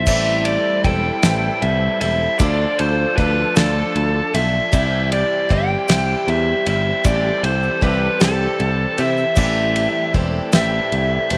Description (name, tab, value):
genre	folk rock and heartland rock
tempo	52 BPM (dotted quarters)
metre	6/8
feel	straight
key	unclear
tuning	A4 = 440 Hz
part	biting lead guitar	melody	0.0-11.4 s	A4 to G5	-22 LUFS	equal	overdrive
part	picked twelve-string acoustic guitar	accompaniment	0.0-11.4 s	A2 to A4	-26 LUFS	equal	none
part	dark studio string section	sustained chords	0.0-11.4 s	E3 to A4	-32 LUFS	equal	none
part	picked electric bass	bass	0.0-11.4 s	E1 to C3	-23 LUFS	equal	none
part	damped 70s drum kit	drums	0.1-11.4 s	crash cymbal, kick drum, ride cymbal, snare drum	-25 LUFS	equal	none
part	tube shaker	percussion	0.1-10.7 s	none	-38 LUFS	equal	none
room	light reverb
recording	none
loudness	-18 LUFS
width	mono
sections	0.1-11.4 A section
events	none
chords	0.1 Am7; 2.4 Dm; 4.7 C; 9.4 Am7